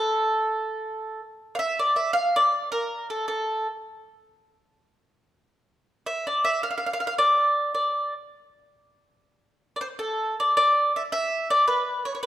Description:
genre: italian folk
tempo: 107 BPM (dotted quarters)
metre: 6/8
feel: straight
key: D minor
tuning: A4 = 438 Hz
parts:
  - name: mandolin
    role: solo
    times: 0.0-3.7, 6.1-12.3 s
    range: A4 to F5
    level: -22 LUFS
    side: equal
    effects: none
room: moderate recital hall reverb, RT60 1.6 s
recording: none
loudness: -22 LUFS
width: side -13 dB against mid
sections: 0.0-1.6 A section; 1.6-10.5 B section; 10.5-12.3 C section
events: none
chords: none

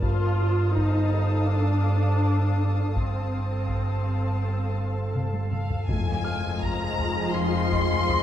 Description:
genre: cinematic, suspense film score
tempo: 82 BPM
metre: 4/4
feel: straight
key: unclear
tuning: A4 = 441 Hz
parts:
  - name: muted symphonic violin section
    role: melody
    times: 0.0-8.2 s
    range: F5 to C6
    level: -33 LUFS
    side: left 3 dB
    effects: none
  - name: muted symphonic violin section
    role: second line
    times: 0.0-8.2 s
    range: Ab4 to F5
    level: -38 LUFS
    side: equal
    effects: none
  - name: muted symphonic viola section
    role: accompaniment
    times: 0.0-8.2 s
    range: F3 to F4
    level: -30 LUFS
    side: left 1 dB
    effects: none
  - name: granular cloud pad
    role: sustained chords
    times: 0.0-8.2 s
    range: F4 to A5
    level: -36 LUFS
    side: left 1 dB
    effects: built-in reverb
  - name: marimba with medium hard mallets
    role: riff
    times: 0.0-8.2 s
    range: F2 to F3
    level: -28 LUFS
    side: left 1 dB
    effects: none
  - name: muted symphonic cello section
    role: bass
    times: 0.0-8.2 s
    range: F2 to G2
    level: -32 LUFS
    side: right 1 dB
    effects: none
  - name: muted symphonic double bass section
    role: bass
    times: 0.0-8.2 s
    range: F1 to G1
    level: -30 LUFS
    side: right 2 dB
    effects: none
  - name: taiko ensemble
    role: drums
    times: 0.0-8.2 s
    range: none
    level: -33 LUFS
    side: left 1 dB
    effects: none
  - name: muted studio violin section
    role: texture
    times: 0.0-5.5 s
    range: A5 to Eb6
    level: -42 LUFS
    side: left 3 dB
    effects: none
  - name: warm concert grand piano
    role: texture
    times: 0.0-8.2 s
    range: F6 to Eb7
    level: -44 LUFS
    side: left 1 dB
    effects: none
  - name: clear trombone section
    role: sustained chords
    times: 5.9-8.2 s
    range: Eb3 to F3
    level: -34 LUFS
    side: right 4 dB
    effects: none
  - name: dark French horn section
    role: sustained chords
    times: 5.9-8.2 s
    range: Ab3 to F4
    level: -34 LUFS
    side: left 6 dB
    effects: none
  - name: timpani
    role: percussion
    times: 5.9-6.9 s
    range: F2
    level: -33 LUFS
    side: left 1 dB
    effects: none
room: wet scoring stage reverb, RT60 1.9 s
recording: dark, warm production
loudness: -22 LUFS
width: side -11 dB against mid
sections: 0.0-5.9 A section; 5.9-8.2 B section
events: drum fill 5.2-5.9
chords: 0.0 Fadd9/G; 5.9 Fm7

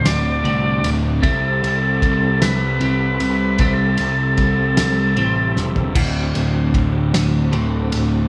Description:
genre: psychedelic rock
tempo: 51 BPM (dotted quarters)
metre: 6/8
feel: straight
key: unclear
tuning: A4 = 444 Hz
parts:
  - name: combo organ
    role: melody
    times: 0.0-5.5 s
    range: A4 to D5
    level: -23 LUFS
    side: equal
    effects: slapback echo
  - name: bright tonewheel organ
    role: sustained chords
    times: 0.0-8.3 s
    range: C4 to A4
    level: -33 LUFS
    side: equal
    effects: slow rotary speaker, overdrive, chorus vibrato
  - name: twelve-string electric guitar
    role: riff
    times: 0.0-8.3 s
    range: D2 to C5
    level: -23 LUFS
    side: equal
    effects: phaser
  - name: fuzz picked electric bass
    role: bass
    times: 0.0-8.3 s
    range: D1 to C2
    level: -23 LUFS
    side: equal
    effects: overdrive
  - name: cloth-damped thuddy drum kit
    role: drums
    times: 0.1-8.1 s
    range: crash cymbal, kick drum, ride cymbal, snare drum, toms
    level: -25 LUFS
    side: equal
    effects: none
room: light reverb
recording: studio reverb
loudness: -18 LUFS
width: mono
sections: 0.0-8.3 A section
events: drum fill 5.6-6.0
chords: 0.0 D7; 1.2 C6; 6.0 D7

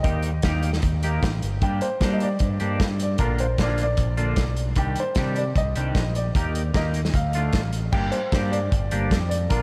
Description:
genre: indie rock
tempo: 152 BPM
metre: 4/4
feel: straight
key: G minor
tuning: A4 = 440 Hz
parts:
  - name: warm upright piano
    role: melody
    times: 0.0-9.6 s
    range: Bb4 to G5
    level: -32 LUFS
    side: equal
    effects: tape echo
  - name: twangy electric guitar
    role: riff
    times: 0.0-9.6 s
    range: D3 to G4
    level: -32 LUFS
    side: equal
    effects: analog chorus
  - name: growling picked electric bass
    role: bass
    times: 0.0-9.6 s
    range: G1 to G3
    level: -27 LUFS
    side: equal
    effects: overdrive
  - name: loose indie drum kit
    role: drums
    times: 0.0-9.6 s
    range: crash cymbal, hi-hat, kick drum, snare drum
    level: -28 LUFS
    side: equal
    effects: none
room: moderate huge ambient reverb, RT60 5.8 s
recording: dreamy mix soaked in reverb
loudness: -23 LUFS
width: mono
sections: 0.0-7.9 A section; 7.9-9.6 A section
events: none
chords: 0.0 Eb; 1.6 Gm; 3.2 Bb; 4.8 Cmadd9; 6.4 Eb; 7.1 Dm; 7.9 Gm

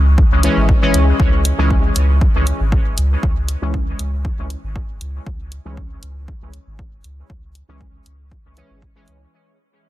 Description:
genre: dub techno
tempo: 118 BPM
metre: 4/4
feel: straight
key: C# minor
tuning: A4 = 440 Hz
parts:
  - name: soft dub sub bass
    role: bass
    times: 0.0-9.3 s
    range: G#1 to C#2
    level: -17 LUFS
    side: equal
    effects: sidechain pumping
  - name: electronic kick drum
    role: drums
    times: 0.2-8.9 s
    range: none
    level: -18 LUFS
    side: equal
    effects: none
  - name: resonant sweep polysynth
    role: stabs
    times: 0.4-9.2 s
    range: E3 to C#4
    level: -21 LUFS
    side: left 1 dB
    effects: chorus, phaser, cassette tape, sidechain pumping, dub echo
  - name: electronic hi-hat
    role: drums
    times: 0.4-9.2 s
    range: none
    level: -23 LUFS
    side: equal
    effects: none
room: little or no reverb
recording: dense, heavily limited modern master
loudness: -14 LUFS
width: side -15 dB against mid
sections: 0.0-9.3 A section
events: fade-out 0.0-9.3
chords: 0.0 C#m

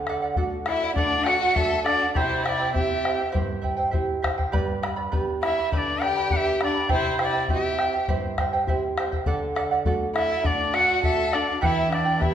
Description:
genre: andean folk, Andean ensemble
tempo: 101 BPM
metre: 4/4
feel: straight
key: unclear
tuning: A4 = 438 Hz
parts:
  - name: charango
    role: accompaniment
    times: 0.0-12.3 s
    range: E4 to B5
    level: -28 LUFS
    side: right 3 dB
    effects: none
  - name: nylon-string guitar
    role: accompaniment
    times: 0.0-12.3 s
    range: G2 to G4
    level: -30 LUFS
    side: right 4 dB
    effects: none
  - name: bombo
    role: percussion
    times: 0.1-12.3 s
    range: none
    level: -27 LUFS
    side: left 2 dB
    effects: none
  - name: bright reedy quena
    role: melody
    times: 0.7-12.3 s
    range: C5 to G5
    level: -24 LUFS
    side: equal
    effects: none
  - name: clear violin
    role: second line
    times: 0.7-12.3 s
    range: D4 to A4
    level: -28 LUFS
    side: left 4 dB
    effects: none
room: wet recital hall reverb, RT60 1.5 s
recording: minimal, uncompressed stereo recording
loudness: -21 LUFS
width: side -9 dB against mid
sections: 0.0-12.3 A section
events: none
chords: 0.0 D; 2.2 C; 4.5 G; 6.9 C; 9.3 D; 11.6 Em

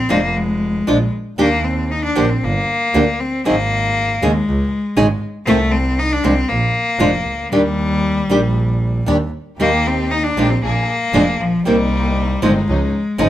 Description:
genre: tango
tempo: 117 BPM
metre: 4/4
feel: rubato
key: Eb major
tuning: A4 = 440 Hz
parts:
  - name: bright cello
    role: second line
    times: 0.0-13.3 s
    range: F3 to Eb4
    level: -18 LUFS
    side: left 2 dB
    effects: none
  - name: clear double bass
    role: bass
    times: 0.0-13.3 s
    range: F1 to Eb2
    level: -20 LUFS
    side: right 1 dB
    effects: none
  - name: nylon-string guitar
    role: accompaniment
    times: 0.1-13.3 s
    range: C3 to Ab4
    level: -16 LUFS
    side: right 1 dB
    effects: none
  - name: dark studio string section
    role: stabs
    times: 9.6-13.3 s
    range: F3 to Ab4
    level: -23 LUFS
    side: right 1 dB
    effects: none
room: light reverb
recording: none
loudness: -15 LUFS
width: side -12 dB against mid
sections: 0.0-13.3 A section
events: cello solo 0.0-13.3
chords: 0.0 Bb7; 1.4 Ebmaj7; 2.4 Gm; 3.5 Ab5; 4.5 Db5; 5.5 F/C; 6.5 Bb5; 7.5 Ebmaj7; 9.6 Eb; 10.6 Bb7; 11.7 Cm7; 12.7 Dbadd9

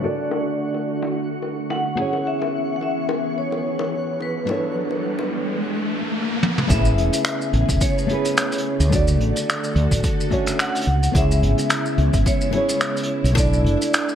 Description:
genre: sunset chillout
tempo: 108 BPM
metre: 4/4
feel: swing 55% on 16ths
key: unclear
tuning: A4 = 441 Hz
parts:
  - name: vibraphone with medium mallets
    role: melody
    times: 0.0-14.2 s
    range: B4 to F#5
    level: -26 LUFS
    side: left 2 dB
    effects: ping-pong delay
  - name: nylon-string guitar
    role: accompaniment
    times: 0.0-14.2 s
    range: A3 to D5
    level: -26 LUFS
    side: right 1 dB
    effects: auto-pan
  - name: soft string machine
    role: sustained chords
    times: 0.0-14.2 s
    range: C#3 to C#6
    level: -28 LUFS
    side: equal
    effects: ensemble chorus
  - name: bongos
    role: percussion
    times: 0.0-5.3 s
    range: none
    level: -32 LUFS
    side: left 4 dB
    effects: none
  - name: twinkling granular texture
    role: texture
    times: 0.0-5.6 s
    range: F#4 to F#5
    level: -39 LUFS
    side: right 2 dB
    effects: built-in reverb
  - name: riser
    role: sound effects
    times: 4.2-6.7 s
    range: none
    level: -27 LUFS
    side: left 1 dB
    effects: none
  - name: vintage brush drum kit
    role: drums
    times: 6.4-14.2 s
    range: finger snaps, hi-hat, shaker, toms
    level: -24 LUFS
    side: equal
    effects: low-pass filter on toms, low-pass filter on hats, low-pass filter on snare, low-pass filter on perc, low-pass filter on room
  - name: mellow fretless electric bass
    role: bass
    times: 6.7-13.8 s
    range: E1 to D2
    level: -18 LUFS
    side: equal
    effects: none
  - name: electronic kick drum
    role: drums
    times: 6.7-13.5 s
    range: none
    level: -22 LUFS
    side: equal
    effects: overdrive
room: light reverb, studio reverb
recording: low-pass filter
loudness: -18 LUFS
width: side -9 dB against mid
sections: 0.0-6.7 A section; 6.7-14.2 B section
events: filter sweep on string machine 0.0-6.7; filter sweep 0.0-6.7; riser 4.2-6.7; drum fill 6.4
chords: 0.0 Dmaj7; 2.0 C#m7; 4.5 Bm11; 6.7 Amaj9; 8.9 Dmaj7; 10.9 C#m7; 13.4 Bm7

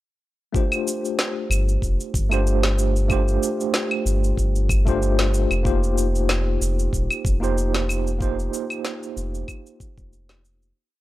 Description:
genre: sunset chillout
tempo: 94 BPM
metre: 4/4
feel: swing 55% on 16ths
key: G minor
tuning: A4 = 440 Hz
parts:
  - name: tine electric piano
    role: accompaniment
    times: 0.5-10.8 s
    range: A3 to C5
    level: -25 LUFS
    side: moving between left 5 dB and right 6 dB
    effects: medium stereo tremolo, auto-pan, low-pass filter, analog delay
  - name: electronic kick drum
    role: drums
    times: 0.5-10.1 s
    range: none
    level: -24 LUFS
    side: equal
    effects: none
  - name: electronic cabasa, claves and snare drum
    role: drums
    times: 0.6-10.7 s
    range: none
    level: -26 LUFS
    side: equal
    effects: none
  - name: warm sub bass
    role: bass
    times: 1.5-10.7 s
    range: Eb1 to G1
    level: -22 LUFS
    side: equal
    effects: none
room: digital ambience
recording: dry, gritty hardware recording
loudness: -20 LUFS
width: side -16 dB against mid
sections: 0.5-10.8 groove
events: fade-out 7.4-10.8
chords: 0.5 G9sus4; 5.7 F9sus4

